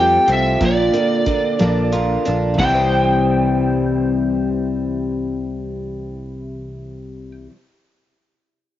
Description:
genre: folk rock and heartland rock.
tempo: 61 BPM (dotted quarters).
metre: 6/8.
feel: straight.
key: C mixolydian.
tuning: A4 = 440 Hz.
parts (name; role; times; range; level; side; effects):
lead guitar through a small cranked amp; melody; 0.0-7.3 s; D5 to G5; -19 LUFS; right 1 dB; overdrive, cassette tape.
picked twelve-string acoustic guitar; accompaniment; 0.0-7.7 s; Bb2 to C5; -21 LUFS; left 4 dB; cassette tape.
electric guitar through a small old amp; riff; 0.0-7.5 s; Bb2 to G4; -24 LUFS; right 2 dB; cassette tape.
picked electric bass; bass; 0.0-7.5 s; Bb1 to F2; -23 LUFS; right 1 dB; none.
cloth-damped thuddy drum kit; drums; 0.3-2.7 s; hi-hat, kick drum, snare drum, splash cymbal; -22 LUFS; equal; cassette tape.
room: moderate spring reverb, RT60 2.8 s.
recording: home recording on cassette, nothing above 7.5 kHz.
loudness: -15 LUFS.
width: side -12 dB against mid.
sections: 0.0-2.6 A section; 2.6-6.5 B section.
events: none.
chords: 0.0 Fadd9; 0.6 Bb; 2.6 C.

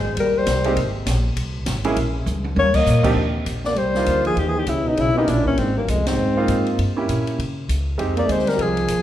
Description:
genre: jazz, small-group swing and bop.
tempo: 199 BPM.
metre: 4/4.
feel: swing 60% on 8ths.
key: C minor from 3.2 s.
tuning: A4 = 439 Hz.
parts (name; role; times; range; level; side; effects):
upright bass; bass; 0.0-9.0 s; G#1 to C#3; -23 LUFS; equal; none.
breathy alto saxophone; melody; 0.2-9.0 s; Ab3 to D#5; -21 LUFS; left 3 dB; none.
breathy trombone; second line; 0.2-9.0 s; F2 to A#3; -25 LUFS; right 3 dB; none.
open jazz drum kit; drums; 0.2-9.0 s; crash cymbal, hi-hat, kick drum, ride cymbal, snare drum, toms; -29 LUFS; equal; none.
bright baby grand piano; accompaniment; 0.7-8.8 s; B#2 to G#4; -25 LUFS; right 2 dB; none.
room: wet recital hall reverb, RT60 1.5 s.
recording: recorded in a church or concert hall.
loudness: -18 LUFS.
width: side -12 dB against mid.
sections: 0.0-3.2 A section; 3.2-9.0 B section.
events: drum fill 2.3-2.9; band accent 2.7, 6.0.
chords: 0.2 D#6; 0.8 G#add9; 2.0 A#m; 2.6 D#; 3.2 Cm11; 4.4 Eb7b9; 5.6 Ab69; 6.8 C#dim7; 8.0 Fm9.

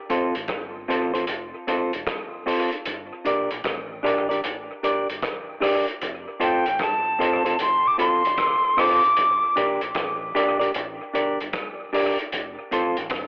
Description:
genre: roots reggae.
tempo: 76 BPM.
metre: 4/4.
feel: swing 65% on 16ths.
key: F major.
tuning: A4 = 441 Hz.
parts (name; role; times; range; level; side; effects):
semi-hollow electric guitar; accompaniment; 0.1-13.0 s; C4 to D5; -24 LUFS; equal; cassette tape, tape echo.
deep dub fingered electric bass; bass; 0.1-13.3 s; E1 to Bb1; -37 LUFS; equal; none.
vintage drum kit; drums; 0.1-13.3 s; hi-hat, kick drum, rim click; -28 LUFS; equal; cassette tape, tape echo.
breathy bright jazz flute; melody; 6.4-9.6 s; G5 to D6; -20 LUFS; equal; cassette tape, tape echo.
room: moderate spring reverb, RT60 2.4 s.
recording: home recording on cassette, telephone sound.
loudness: -20 LUFS.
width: side -37 dB against mid.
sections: 0.0-13.3 A section.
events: none.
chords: 0.0 F; 2.9 Gm; 6.0 F; 9.2 Gm; 12.3 F.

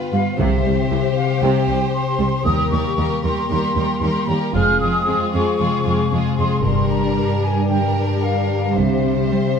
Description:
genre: cinematic, heroic adventure film score.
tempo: 115 BPM.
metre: 4/4.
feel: straight.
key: F minor.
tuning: A4 = 444 Hz.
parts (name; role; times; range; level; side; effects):
warm symphonic violin section; melody; 0.0-9.6 s; Ab4 to C5; -28 LUFS; left 4 dB; none.
warm symphonic violin section; second line; 0.0-9.6 s; C4 to G4; -30 LUFS; left 2 dB; none.
mellow French horn section; sustained chords; 0.0-9.6 s; Bb3 to Ab4; -25 LUFS; left 5 dB; none.
concert harp; arpeggios; 0.0-9.6 s; F2 to C5; -24 LUFS; left 9 dB; none.
mellow hollow small flute group; second line; 0.1-9.6 s; E5 to F6; -24 LUFS; left 1 dB; none.
rich symphonic viola section; accompaniment; 0.1-9.6 s; C3 to Ab3; -26 LUFS; right 4 dB; none.
rich studio cello section; bass; 0.1-9.4 s; C2 to G3; -22 LUFS; right 4 dB; none.
rich symphonic double bass section; bass; 0.4-9.3 s; F1 to Eb2; -24 LUFS; right 3 dB; none.
timpani; percussion; 0.4-1.1 s; C3; -29 LUFS; right 2 dB; none.
room: moderate scoring stage reverb, RT60 1.6 s.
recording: none.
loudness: -16 LUFS.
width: side -6 dB against mid.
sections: 0.0-9.6 A section.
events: none.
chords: 0.4 C; 2.5 Eb; 4.5 Fm; 6.6 Gm; 8.8 C.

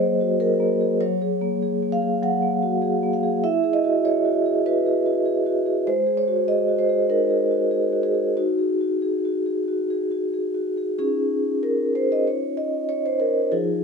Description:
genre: classical, contemporary piece for solo vibraphone.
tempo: 90-101 BPM.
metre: 4/4.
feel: rubato.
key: Db major.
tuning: A4 = 440 Hz.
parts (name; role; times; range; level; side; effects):
vibraphone with soft mallets; solo; 0.0-13.8 s; F3 to Gb5; -20 LUFS; equal; none.
room: moderate stone room reverb, RT60 1.1 s.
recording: minimal, uncompressed stereo recording.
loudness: -20 LUFS.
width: side -5 dB against mid.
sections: 0.0-11.0 A section; 11.0-13.8 A section.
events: none.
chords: 0.0 Gbadd9; 3.4 Eadd9; 5.9 Absus2; 8.4 Ebmadd11; 11.0 Dbadd9.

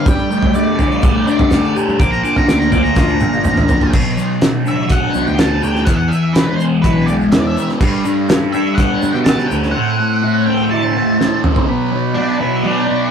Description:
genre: psychedelic rock.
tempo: 124 BPM.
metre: 4/4.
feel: straight.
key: unclear.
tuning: A4 = 440 Hz.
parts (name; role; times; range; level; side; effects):
octave-fuzz lead guitar; melody; 0.0-13.1 s; D4 to D6; -21 LUFS; equal; distortion.
combo organ; sustained chords; 0.0-3.9, 7.8-13.1 s; A3 to B5; -27 LUFS; right 5 dB; none.
fuzz guitar; riff; 0.0-13.1 s; E2 to G4; -16 LUFS; left 1 dB; distortion, phaser.
picked electric bass; bass; 0.1-9.7 s; G1 to B2; -21 LUFS; right 1 dB; none.
cloth-damped thuddy drum kit; drums; 0.1-11.7 s; crash cymbal, hi-hat, kick drum, snare drum, toms; -16 LUFS; equal; none.
tube shaker; percussion; 0.1-9.6 s; none; -41 LUFS; left 7 dB; none.
room: moderate studio reverb, RT60 0.6 s.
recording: rough rehearsal-room recording, warm saturation.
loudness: -12 LUFS.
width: side -7 dB against mid.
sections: 0.0-3.9 A section; 3.9-11.7 B section; 11.7-13.1 C section.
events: lead electric guitar solo 0.0-3.9; drum fill 3.0-3.9, 11.2-11.7.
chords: 0.1 Gadd9; 2.0 Bbadd9; 3.9 Bm; 5.9 E; 7.8 Gadd9; 9.7 Am; 11.7 Bm.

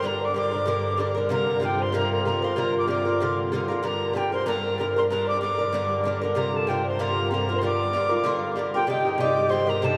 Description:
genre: celtic folk.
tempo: 190 BPM.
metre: 4/4.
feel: swing 56% on 8ths.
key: G minor.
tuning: A4 = 441 Hz.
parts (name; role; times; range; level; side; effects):
mid whistle; melody; 0.0-10.0 s; G5 to D6; -31 LUFS; equal; none.
mellow baroque flute; second line; 0.0-10.0 s; G4 to Eb5; -30 LUFS; equal; none.
Irish bouzouki; accompaniment; 0.0-10.0 s; G2 to Bb4; -28 LUFS; equal; none.
muted studio string section; drone; 0.0-10.0 s; G2; -35 LUFS; equal; none.
room: wet huge ambient reverb, RT60 7.0 s.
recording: in a vast, echoing space.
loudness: -24 LUFS.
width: mono.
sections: 0.0-8.9 A section; 8.9-10.0 B section.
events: none.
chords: 0.0 Gm; 1.3 Bbadd9; 3.8 Gm; 6.4 Bbadd9; 7.6 Gm7; 8.9 Cmadd9.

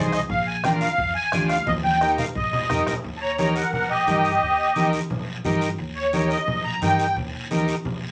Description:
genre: latin, cumbia.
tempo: 175 BPM.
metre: 4/4.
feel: straight.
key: Eb major.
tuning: A4 = 439 Hz.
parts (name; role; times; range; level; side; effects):
musette accordion; melody; 0.0-7.2 s; G4 to Bb5; -24 LUFS; equal; none.
overdriven combo organ; accompaniment; 0.0-7.8 s; D4 to C5; -29 LUFS; equal; none.
upright bass; bass; 0.0-8.1 s; Bb1 to G2; -35 LUFS; equal; none.
bombo; percussion; 0.1-3.0 s; none; -35 LUFS; equal; none.
guiro; percussion; 0.1-8.1 s; none; -39 LUFS; equal; none.
congas; percussion; 0.3-8.0 s; none; -30 LUFS; equal; none.
room: wet studio reverb, RT60 0.6 s.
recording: none.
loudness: -23 LUFS.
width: mono.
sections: 0.0-3.0 A section; 3.0-8.1 B section.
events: drum fill 1.7-3.0; accordion solo 3.0-8.1.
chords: 0.3 Bb7; 1.7 Eb.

